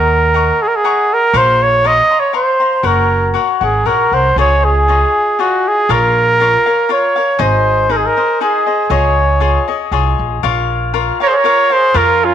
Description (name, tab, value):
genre	mexican folk, mariachi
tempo	119 BPM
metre	3/4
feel	swing 53% on 8ths, rubato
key	Db major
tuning	A4 = 442 Hz
part	clear trumpet	melody	0.0-12.3 s	F4 to Eb5	-12 LUFS	right 2 dB	none
part	cavaquinho	accompaniment	0.0-12.3 s	Eb4 to Db6	-17 LUFS	left 9 dB	none
part	upright bass	bass	0.0-12.3 s	Gb1 to F2	-17 LUFS	right 2 dB	none
part	bright trumpet	second line	11.2-12.3 s	Db4 to Bb4	-18 LUFS	right 11 dB	none
room	moderate echo chamber reverb, RT60 1.3 s, studio ambience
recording	1960s-style stereo with parts hard left and right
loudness	-10 LUFS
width	side -9 dB against mid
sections	0.0-10.4 A section; 10.4-12.3 B section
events	none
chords	0.0 Ebm7; 1.3 Bbmadd9; 2.8 Gb; 4.4 Dbadd9; 5.9 Bbm; 7.4 Ab; 8.9 Dbadd9; 10.4 Bbm